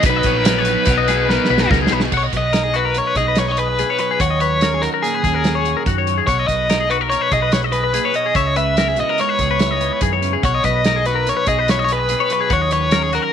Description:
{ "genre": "math rock and midwest emo", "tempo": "144 BPM", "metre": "5/4", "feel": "straight", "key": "B major", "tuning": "A4 = 439 Hz", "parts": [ { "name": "biting overdriven guitar", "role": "melody", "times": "0.0-13.3 s", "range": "G#4 to E5", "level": "-19 LUFS", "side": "left 1 dB", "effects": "tremolo, slapback echo" }, { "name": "electric guitar through a small old amp", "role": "accompaniment", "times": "0.0-13.3 s", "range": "G#2 to B4", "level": "-26 LUFS", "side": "right 14 dB", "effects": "none" }, { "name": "twelve-string electric guitar", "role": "arpeggios", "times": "0.0-13.3 s", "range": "F#4 to F#5", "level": "-21 LUFS", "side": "left 11 dB", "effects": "none" }, { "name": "overdriven electric guitar", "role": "riff", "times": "0.0-2.1 s", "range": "B2 to D#4", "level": "-21 LUFS", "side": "right 1 dB", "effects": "none" }, { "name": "hollow-body short-scale fingered electric bass", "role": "bass", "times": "0.0-13.2 s", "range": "A#1 to F#2", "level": "-23 LUFS", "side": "right 1 dB", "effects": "none" }, { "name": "loose indie drum kit", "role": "drums", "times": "0.0-13.2 s", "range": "crash cymbal, hi-hat, kick drum, snare drum", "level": "-21 LUFS", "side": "right 2 dB", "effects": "none" } ], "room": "light reverb", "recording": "1960s-style stereo with parts hard left and right", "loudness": "-15 LUFS", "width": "side -8 dB against mid", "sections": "0.0-2.1 A section; 2.1-13.3 B section", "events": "drum fill 1.3-2.1", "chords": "0.1 Bmaj7; 2.1 B69; 4.2 D#m7; 6.3 B69; 8.4 C#m9; 10.4 B69; 12.5 D#m7" }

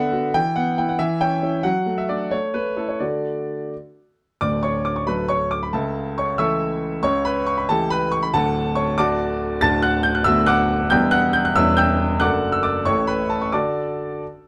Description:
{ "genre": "classical-period piano sonatina", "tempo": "92 BPM (dotted quarters)", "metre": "6/8", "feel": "rubato", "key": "D major", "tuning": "A4 = 441 Hz", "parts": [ { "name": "clear grand piano", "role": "solo", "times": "0.0-14.2 s", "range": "D1 to A6", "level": "-21 LUFS", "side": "equal", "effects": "none" } ], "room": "light reverb", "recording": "dark, warm production", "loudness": "-21 LUFS", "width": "mono", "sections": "0.0-4.4 A section; 4.4-14.5 B section", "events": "none", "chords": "0.3 E5; 1.0 C#dim/E; 1.6 D/F#; 2.3 A5; 3.0 D; 5.7 A/C#; 7.0 A7/C#; 8.3 D; 10.3 Bm/D; 10.9 Em; 11.6 C#dim/E; 12.2 D/F#; 12.9 A; 13.5 D" }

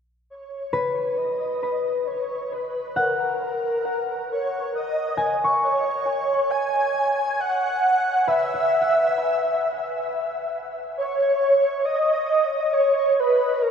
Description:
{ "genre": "ambient", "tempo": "67 BPM", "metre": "3/4", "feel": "straight", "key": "unclear", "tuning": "A4 = 440 Hz", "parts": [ { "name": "breathy flute-like synth lead", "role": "melody", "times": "0.3-13.7 s", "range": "A#4 to G#5", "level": "-21 LUFS", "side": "equal", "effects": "tremolo, ensemble chorus, tape echo" }, { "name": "concert harp", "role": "arpeggios", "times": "0.7-10.4 s", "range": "B4 to C#6", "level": "-26 LUFS", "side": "left 1 dB", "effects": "tape echo" } ], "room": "wet huge ambient reverb, RT60 8.1 s", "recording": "faint mains hum", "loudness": "-20 LUFS", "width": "side -7 dB against mid", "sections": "0.3-11.0 A section; 11.0-13.7 A section", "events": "fade-in on soft synth lead 0.3-11.0; fade-out on harp 0.3-11.0", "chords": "0.3 N.C.; 3.0 F#add9; 5.6 C#sus4; 8.3 Bsus4; 11.0 N.C." }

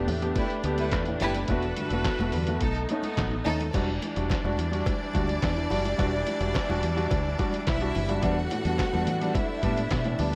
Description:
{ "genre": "disco", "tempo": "107 BPM", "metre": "4/4", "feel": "straight", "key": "E minor", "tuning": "A4 = 440 Hz", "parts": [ { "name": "warm grand piano", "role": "accompaniment", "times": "0.0-10.3 s", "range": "G2 to G4", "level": "-33 LUFS", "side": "equal", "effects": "none" }, { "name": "clear studio string section", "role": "sustained chords", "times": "0.0-10.4 s", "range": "E3 to B4", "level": "-37 LUFS", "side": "equal", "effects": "none" }, { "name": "fingered electric bass", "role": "bass", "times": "0.0-10.4 s", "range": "E1 to E3", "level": "-32 LUFS", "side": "equal", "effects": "none" }, { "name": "lo-fi sampler-style drum kit", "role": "drums", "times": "0.1-10.3 s", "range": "crash cymbal, handclaps, hi-hat, kick drum, snare drum", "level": "-34 LUFS", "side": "equal", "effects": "none" }, { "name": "congas", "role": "percussion", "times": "0.1-10.3 s", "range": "none", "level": "-42 LUFS", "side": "equal", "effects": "none" }, { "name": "rich chamber violin section", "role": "second line", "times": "0.4-10.4 s", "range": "G3 to F#5", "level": "-34 LUFS", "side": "equal", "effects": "slapback echo" }, { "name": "cowbell", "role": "percussion", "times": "3.7-10.0 s", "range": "none", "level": "-44 LUFS", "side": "equal", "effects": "none" } ], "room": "light reverb, small room ambience", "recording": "none", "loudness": "-27 LUFS", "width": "mono", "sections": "0.0-3.7 A section; 3.7-10.4 B section", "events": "none", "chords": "0.0 A9sus4; 2.6 B7; 3.7 Em7; 8.2 A9sus4/E" }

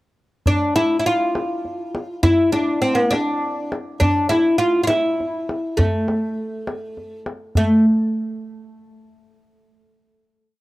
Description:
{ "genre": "Persian modal ensemble", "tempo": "68 BPM (dotted quarters)", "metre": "6/8", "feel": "straight", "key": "A dastgah shur", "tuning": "A4 = 440 Hz", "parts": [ { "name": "oud", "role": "melody", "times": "0.5-7.8 s", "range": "A3 to F4", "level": "-18 LUFS", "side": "equal", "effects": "none" }, { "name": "tombak", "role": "percussion", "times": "0.5-7.8 s", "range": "none", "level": "-21 LUFS", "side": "equal", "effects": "none" } ], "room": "studio reverb", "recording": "dry, close 1970s-style studio recording", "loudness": "-17 LUFS", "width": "side -18 dB against mid", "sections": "0.5-7.6 A section; 7.6-9.3 final note", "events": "none", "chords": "none" }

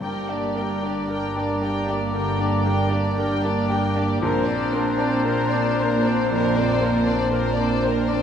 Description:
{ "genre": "cinematic", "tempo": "58 BPM", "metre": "4/4", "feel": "rubato", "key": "unclear", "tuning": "A4 = 441 Hz", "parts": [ { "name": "warm symphonic violin section", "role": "melody", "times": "0.0-8.2 s", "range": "C5 to G5", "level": "-30 LUFS", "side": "left 4 dB", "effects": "none" }, { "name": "clear oboe", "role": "second line", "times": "0.0-8.0 s", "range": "C5 to D5", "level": "-31 LUFS", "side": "right 1 dB", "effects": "none" }, { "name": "concert flute", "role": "second line", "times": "0.0-8.1 s", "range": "Bb5", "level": "-34 LUFS", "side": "left 1 dB", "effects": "none" }, { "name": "rich studio violin section", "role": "second line", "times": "0.0-8.2 s", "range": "G4 to C5", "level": "-31 LUFS", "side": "left 3 dB", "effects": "none" }, { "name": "warm clarinet", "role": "second line", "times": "0.0-8.0 s", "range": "D4", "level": "-32 LUFS", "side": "left 1 dB", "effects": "none" }, { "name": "bright grand piano", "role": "accompaniment", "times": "0.0-8.2 s", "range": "Bb1 to C5", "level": "-27 LUFS", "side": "left 1 dB", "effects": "none" }, { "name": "dark symphonic viola section", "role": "accompaniment", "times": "0.0-8.2 s", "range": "G3 to C4", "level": "-30 LUFS", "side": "right 2 dB", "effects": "none" }, { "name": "warm French horn section", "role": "sustained chords", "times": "0.0-8.2 s", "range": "Bb3 to D4", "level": "-29 LUFS", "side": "left 2 dB", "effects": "none" }, { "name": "dark symphonic double bass section", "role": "bass", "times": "0.0-8.2 s", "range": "G1 to Bb1", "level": "-29 LUFS", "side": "right 3 dB", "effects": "none" }, { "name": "rich symphonic cello section", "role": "bass", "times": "0.0-8.2 s", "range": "G2 to Bb2", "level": "-27 LUFS", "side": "right 2 dB", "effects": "none" } ], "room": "wet scoring stage reverb, RT60 1.6 s", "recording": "heard from further back in the room", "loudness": "-20 LUFS", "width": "side -8 dB against mid", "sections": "0.0-8.2 A section", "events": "none", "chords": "0.0 Gm; 4.2 Bbadd9" }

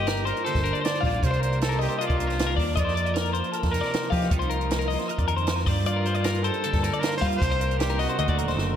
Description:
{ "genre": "math rock and midwest emo", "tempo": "155 BPM", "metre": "4/4", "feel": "straight", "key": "G minor", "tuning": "A4 = 440 Hz", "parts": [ { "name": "clear trumpet", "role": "melody", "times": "0.0-8.6 s", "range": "F4 to D5", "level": "-30 LUFS", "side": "equal", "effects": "ping-pong delay" }, { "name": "twelve-string electric guitar", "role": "accompaniment", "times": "0.0-8.8 s", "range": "G2 to Bb4", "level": "-32 LUFS", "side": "right 4 dB", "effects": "ensemble chorus" }, { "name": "twelve-string electric guitar", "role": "arpeggios", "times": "0.0-8.8 s", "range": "A4 to F5", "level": "-28 LUFS", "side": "left 5 dB", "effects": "none" }, { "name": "picked electric bass", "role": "bass", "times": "0.0-8.7 s", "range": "Eb1 to G3", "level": "-27 LUFS", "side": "equal", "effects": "none" }, { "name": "compact cocktail drum kit", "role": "drums", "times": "0.1-8.7 s", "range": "hi-hat, kick drum, snare drum", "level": "-28 LUFS", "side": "right 1 dB", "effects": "none" } ], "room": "wet lush hall reverb, RT60 2.0 s", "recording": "dreamy mix soaked in reverb", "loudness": "-22 LUFS", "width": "side -9 dB against mid", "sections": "0.0-8.8 A section", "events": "drum fill 8.6", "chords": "0.0 Gm7; 1.2 Cm9; 2.8 F7sus4; 5.7 Gm7; 7.4 Cm9; 8.2 D7b9b13" }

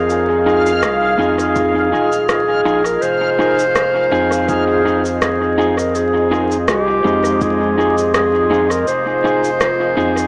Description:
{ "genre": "ambient dub", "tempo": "82 BPM", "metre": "4/4", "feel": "swing 55% on 16ths", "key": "F minor", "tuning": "A4 = 440 Hz", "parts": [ { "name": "dark clarinet", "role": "melody", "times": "0.0-10.3 s", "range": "G4 to C5", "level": "-19 LUFS", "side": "equal", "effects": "dub echo" }, { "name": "deep dark ambient pad", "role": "sustained chords", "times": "0.0-10.3 s", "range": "F4 to Eb5", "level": "-27 LUFS", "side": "equal", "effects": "chorus, built-in reverb" }, { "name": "warm sub bass", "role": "bass", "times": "0.0-10.3 s", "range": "Eb1 to F2", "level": "-26 LUFS", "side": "equal", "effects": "tube saturation" }, { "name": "backwards swelling texture", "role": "texture", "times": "0.0-3.0 s", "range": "F5", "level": "-25 LUFS", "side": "equal", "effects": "built-in reverb" }, { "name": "electronic cabasa and rim click", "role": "drums", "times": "0.1-10.3 s", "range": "none", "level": "-27 LUFS", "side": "equal", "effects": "dub echo" }, { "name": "electric guitar at the edge of break-up", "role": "stabs", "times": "0.5-10.3 s", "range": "Ab3 to Ab4", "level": "-22 LUFS", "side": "equal", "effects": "dub echo" }, { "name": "electronic kick drum", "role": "drums", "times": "1.6-7.6 s", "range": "none", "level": "-28 LUFS", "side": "equal", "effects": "none" } ], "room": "moderate echo chamber reverb, RT60 1.9 s, digital ambience", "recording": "echo-heavy mix, vinyl crackle, small speaker sound", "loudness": "-16 LUFS", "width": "mono", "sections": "0.0-3.0 A section; 3.0-10.3 B section", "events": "none", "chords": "0.0 Fm7" }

